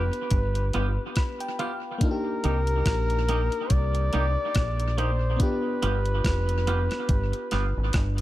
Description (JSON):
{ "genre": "lovers rock reggae", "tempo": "71 BPM", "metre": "4/4", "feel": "swing 57% on 16ths", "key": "C minor", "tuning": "A4 = 438 Hz", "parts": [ { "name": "warm flugelhorn", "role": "melody", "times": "0.0-8.2 s", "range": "Bb4 to D5", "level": "-30 LUFS", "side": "equal", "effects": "tape echo" }, { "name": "FM electric piano", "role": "accompaniment", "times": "0.0-8.2 s", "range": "Bb3 to B5", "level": "-34 LUFS", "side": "left 2 dB", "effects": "chorus" }, { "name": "deep dub fingered electric bass", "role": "bass", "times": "0.0-8.2 s", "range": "F1 to C2", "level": "-25 LUFS", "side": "equal", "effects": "none" }, { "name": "gated 80s digital drum machine", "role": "drums", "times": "0.1-8.2 s", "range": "hi-hat, kick drum, rim click", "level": "-26 LUFS", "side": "equal", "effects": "overdrive, tape echo" }, { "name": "twangy electric guitar", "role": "stabs", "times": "0.7-7.6 s", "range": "Bb3 to G4", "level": "-34 LUFS", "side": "right 3 dB", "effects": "lush chorus, tape echo" } ], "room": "digital ambience", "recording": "none", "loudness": "-23 LUFS", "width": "side -15 dB against mid", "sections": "0.0-8.2 A section", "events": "FM electric piano fill 0.7-2.0", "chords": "0.0 G7; 2.0 Cm7; 5.4 G7", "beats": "0.32 1.17 | 2.01 2.86 3.71 4.55 | 5.40 6.25 7.09 7.94" }